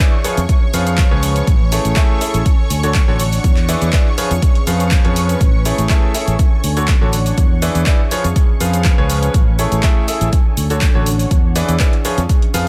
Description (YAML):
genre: piano house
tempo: 122 BPM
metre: 4/4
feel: straight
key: A major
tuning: A4 = 439 Hz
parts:
  - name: analog string pad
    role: sustained chords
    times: 0.0-12.7 s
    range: C#5 to C#6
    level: -31 LUFS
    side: equal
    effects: ensemble chorus, sidechain pumping
  - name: bright concert grand piano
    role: riff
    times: 0.0-12.7 s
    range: D3 to E#5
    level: -23 LUFS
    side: equal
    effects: sidechain pumping, delay
  - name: electronic kick drum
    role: drums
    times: 0.0-12.4 s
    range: none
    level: -16 LUFS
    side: equal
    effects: overdrive
  - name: punchy analog drum machine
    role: drums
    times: 0.0-12.6 s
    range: cabasa, handclaps, hi-hat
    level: -26 LUFS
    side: equal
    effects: overdrive
  - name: warbly tape-like pad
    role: texture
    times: 0.1-12.7 s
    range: C#4 to G#5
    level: -30 LUFS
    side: equal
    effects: chorus, built-in reverb, sidechain pumping
  - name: fingered electric bass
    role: bass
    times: 0.4-12.7 s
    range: A1 to E#2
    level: -20 LUFS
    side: equal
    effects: sidechain pumping
room: little or no reverb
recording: none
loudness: -15 LUFS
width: mono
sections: 0.0-12.7 A section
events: none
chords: 0.2 C#7/E#; 1.5 Amaj7; 2.5 Dmaj7; 3.4 E7; 4.2 C#7/E#; 5.4 Amaj7; 6.4 Dmaj7; 7.4 E7; 8.1 C#7/E#; 9.3 Amaj7; 10.3 Dmaj7; 11.3 E7; 12.0 C#7/E#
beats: 0.00 0.49 0.98 | 1.47 1.97 2.46 2.95 | 3.44 3.93 4.42 4.92 | 5.41 5.90 6.39 6.88 | 7.38 7.87 8.36 8.85 | 9.34 9.84 10.33 10.82 | 11.31 11.80 12.29